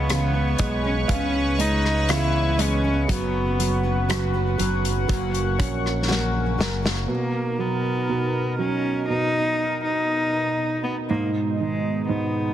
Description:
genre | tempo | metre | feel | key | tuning
pop ballad | 60 BPM | 4/4 | straight | B major | A4 = 441 Hz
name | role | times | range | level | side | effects
warm cello | melody | 0.0-12.5 s | G#3 to E4 | -25 LUFS | left 1 dB | none
warm concert grand piano | accompaniment | 0.0-12.5 s | G#2 to A#4 | -27 LUFS | right 4 dB | none
sweeping resonant pad | sustained chords | 0.0-12.5 s | B2 to C#6 | -29 LUFS | equal | chorus
fingerpicked steel-string acoustic guitar | arpeggios | 0.0-7.1 s | F#2 to G#4 | -31 LUFS | left 7 dB | digital delay
modern bright fingered electric bass | bass | 0.0-7.1 s | F#1 to C#2 | -25 LUFS | equal | none
loose indie drum kit | drums | 0.1-7.1 s | hi-hat, kick drum, rim click, snare drum | -27 LUFS | left 1 dB | soft clipping on kick
room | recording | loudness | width
light reverb, small room ambience | dense, heavily limited modern master | -20 LUFS | side -11 dB against mid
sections
0.0-7.1 A section; 7.1-12.5 B section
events
drum fill 6.1-7.1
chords
0.0 C#m7; 3.1 F#sus4; 5.1 F#; 7.1 Bmaj7; 11.1 G#m

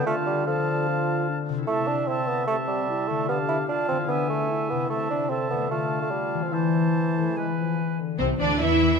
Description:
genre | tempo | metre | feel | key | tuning
classical, dramatic, fast romantic movement for symphony orchestra | 149 BPM | 4/4 | straight | A minor | A4 = 438 Hz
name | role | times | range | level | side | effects
dark clarinet | second line | 0.0-8.0 s | C4 to A4 | -33 LUFS | right 2 dB | none
silver concert flute | second line | 0.0-8.0 s | G#5 to A5 | -35 LUFS | equal | none
warm oboe | second line | 0.0-8.0 s | B4 to F5 | -32 LUFS | right 3 dB | none
warm bassoon | accompaniment | 0.0-7.8 s | E3 to E4 | -27 LUFS | right 3 dB | none
mellow French horn section | sustained chords | 0.0-9.0 s | C3 to E4 | -31 LUFS | left 2 dB | none
concert harp | arpeggios | 0.0-9.0 s | A2 to A4 | -29 LUFS | left 8 dB | none
warm symphonic violin section | melody | 8.2-9.0 s | C5 to E5 | -28 LUFS | left 2 dB | none
warm studio violin section | second line | 8.2-9.0 s | C4 to E4 | -30 LUFS | left 3 dB | none
warm studio viola section | accompaniment | 8.2-9.0 s | C4 to E4 | -26 LUFS | right 4 dB | none
rich symphonic cello section | bass | 8.2-9.0 s | C3 to E3 | -29 LUFS | right 2 dB | none
rich symphonic double bass section | bass | 8.2-9.0 s | C2 to E2 | -26 LUFS | right 6 dB | none
room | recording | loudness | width
moderate scoring stage reverb, RT60 1.9 s | none | -22 LUFS | side -5 dB against mid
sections
0.0-8.2 A section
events
none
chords
0.1 Dm7; 1.7 Am/C; 3.3 Bm7b5/D; 4.1 E7/D; 4.9 Am/C; 5.7 Dm; 6.5 Am/E; 7.4 E; 8.2 Am/C

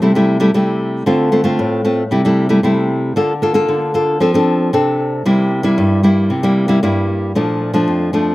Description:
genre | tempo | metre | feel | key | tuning
samba | 114 BPM | 4/4 | straight | unclear | A4 = 440 Hz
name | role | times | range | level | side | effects
nylon-string guitar | solo | 0.0-8.3 s | F2 to A4 | -12 LUFS | equal | slapback echo
room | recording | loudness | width
light reverb | recorded outdoors, with no room sound | -13 LUFS | side -18 dB against mid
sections
0.0-7.4 A section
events
none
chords
0.0 Am7/C; 1.1 Dm7; 2.1 Am7/C; 3.2 Bbmaj7/D; 4.2 F6; 5.3 C7; 7.4 Bbmaj7

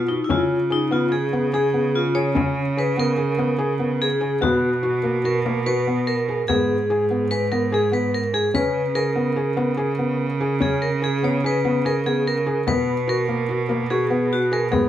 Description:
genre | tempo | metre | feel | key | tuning
contemporary instrumental, chamber music in an uneven meter | 146 BPM | 5/4 | straight | unclear | A4 = 441 Hz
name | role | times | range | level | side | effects
vibraphone with hard mallets | second line | 0.0-14.9 s | D#4 to C#5 | -22 LUFS | equal | none
bright cello | bass | 0.0-14.9 s | G#2 to C#3 | -25 LUFS | right 4 dB | none
felt-muted upright piano | arpeggios | 0.1-14.9 s | A#3 to G#4 | -24 LUFS | left 2 dB | none
frame drum | percussion | 0.3-14.9 s | none | -29 LUFS | left 7 dB | none
room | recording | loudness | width
light reverb | close, detailed microphones | -19 LUFS | side -11 dB against mid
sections
0.3-14.9 A section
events
none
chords
0.3 C#7(no3); 4.4 B5; 6.5 G#m; 8.5 C#5; 12.7 B5

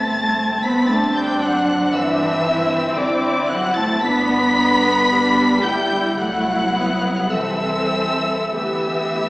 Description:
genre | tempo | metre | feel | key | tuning
classical, slow romantic movement for string orchestra | 46-59 BPM | 4/4 | rubato | G major | A4 = 440 Hz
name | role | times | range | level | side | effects
rich chamber violin section | melody | 0.0-9.3 s | D6 to B6 | -23 LUFS | left 1 dB | none
rich chamber violin section | second line | 0.0-9.3 s | D5 to B5 | -22 LUFS | left 1 dB | none
rich studio viola section | accompaniment | 0.0-9.3 s | G3 to A4 | -21 LUFS | equal | none
rich chamber cello section | bass | 0.0-9.3 s | D3 to B3 | -22 LUFS | equal | none
warm chamber double bass section | bass | 0.0-9.3 s | G1 to D2 | -31 LUFS | equal | none
room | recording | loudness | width
wet scoring stage reverb, RT60 1.6 s | heard from further back in the room, small speaker sound | -16 LUFS | side -20 dB against mid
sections
0.0-9.3 A section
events
none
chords
0.0 D7/G; 4.1 G; 6.2 Am/C; 8.6 G/D

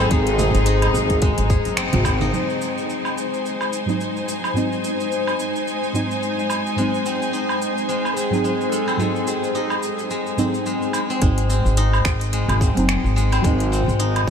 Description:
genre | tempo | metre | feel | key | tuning
organic downtempo | 108 BPM | 4/4 | swing 58% on 16ths | unclear | A4 = 438 Hz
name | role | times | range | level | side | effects
clear clarinet | melody | 0.0-1.8, 6.8-10.3 s | G#4 to B#4 | -28 LUFS | right 1 dB | ping-pong delay
deep mellow chord stab | accompaniment | 0.0-14.3 s | G#2 to D#4 | -26 LUFS | right 1 dB | chorus, sidechain pumping, ping-pong delay
clear studio string section | sustained chords | 0.0-11.2 s | G#3 to G#5 | -26 LUFS | left 2 dB | sidechain pumping
steel-string zither | arpeggios | 0.0-14.3 s | G#3 to G#4 | -26 LUFS | left 3 dB | vintage 12-bit sampler grit, ping-pong delay
upright bass | bass | 0.0-2.3, 11.2-14.3 s | F#1 to G#1 | -20 LUFS | equal | none
organic electronic drum kit | drums | 0.0-14.3 s | finger snaps, hi-hat, shaker, woodblock | -28 LUFS | right 1 dB | none
electronic kick drum | drums | 0.1-2.2, 11.2-14.3 s | none | -19 LUFS | equal | none
congas | percussion | 0.4-2.3 s | none | -30 LUFS | right 4 dB | none
room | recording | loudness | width
wet huge ambient reverb, RT60 7.9 s | dreamy mix soaked in reverb | -18 LUFS | side -7 dB against mid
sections
0.0-2.3 A section; 2.3-11.2 B section; 11.2-14.3 A section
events
band accent 1.8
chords
0.0 G#7

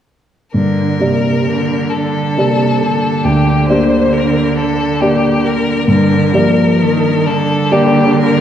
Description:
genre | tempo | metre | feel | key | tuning
classical, slow romantic movement for piano quartet | 45 BPM (dotted quarters) | 12/8 | rubato | G minor | A4 = 440 Hz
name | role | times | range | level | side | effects
bright violin | melody | 0.5-8.4 s | G4 to C5 | -18 LUFS | left 3 dB | none
warm baby grand piano | accompaniment | 0.5-8.4 s | D2 to D5 | -13 LUFS | left 1 dB | none
warm cello | second line | 0.6-8.4 s | C3 to F3 | -16 LUFS | right 4 dB | none
room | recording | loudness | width
wet concert hall reverb, RT60 1.8 s | dark, warm production | -11 LUFS | side -9 dB against mid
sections
0.6-8.4 A section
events
none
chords
0.6 Gm

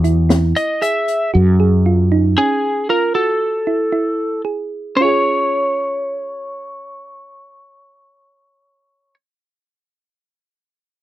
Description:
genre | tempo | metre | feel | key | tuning
progressive instrumental, band music in an uneven meter | 231 BPM (eighths) | 7/8 | straight | Db major | A4 = 440 Hz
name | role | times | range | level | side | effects
thumb-piano-like synth pluck | arpeggios | 0.0-9.3 s | Db4 to Db5 | -20 LUFS | right 5 dB | chorus
fretless electric bass | bass | 0.0-2.3 s | E2 to Gb2 | -12 LUFS | equal | lush chorus
open jazz drum kit | drums | 0.0-1.2 s | hi-hat, snare drum | -20 LUFS | left 2 dB | none
lightly driven lead guitar | melody | 0.6-9.1 s | Ab4 to E5 | -18 LUFS | left 1 dB | none
room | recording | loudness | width
light reverb | dry, close 1970s-style studio recording | -14 LUFS | side -14 dB against mid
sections
0.0-5.0 A section; 5.0-8.6 B section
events
none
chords
0.0 E; 1.3 Gbsus2; 3.2 A5; 5.0 Db

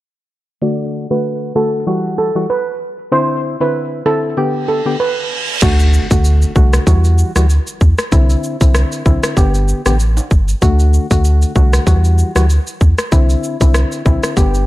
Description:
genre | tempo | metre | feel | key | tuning
dancehall | 96 BPM | 4/4 | swing 56% on 16ths | unclear | A4 = 440 Hz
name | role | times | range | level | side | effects
steel pan | melody | 0.6-5.5 s | A4 to D5 | -18 LUFS | right 3 dB | low-pass filter, tape echo
percussive organ stab | accompaniment | 0.6-14.7 s | D3 to G4 | -18 LUFS | left 2 dB | chorus, low-pass filter
reverse cymbal and impact | sound effects | 4.7-8.1 s | none | -22 LUFS | right 3 dB | none
warm sub bass | bass | 5.6-14.7 s | G1 to E2 | -12 LUFS | equal | none
island pop drum kit | drums | 5.6-14.7 s | crash cymbal, kick drum, rim click, shaker | -14 LUFS | equal | none
maracas and timbales | percussion | 5.6-14.7 s | none | -30 LUFS | right 4 dB | none
room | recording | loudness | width
digital ambience | dark, warm production | -12 LUFS | side -16 dB against mid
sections
0.6-5.6 A section; 5.6-14.7 B section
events
filter sweep 0.6-5.6; reverse cymbal 4.7-5.6; impact 5.6-8.1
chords
0.6 D; 1.9 Emadd9; 3.1 Cadd9; 4.4 G; 5.6 D; 6.9 Emadd9; 8.1 Cadd9; 9.4 G; 10.6 D; 11.9 Emadd9; 13.1 Cadd9

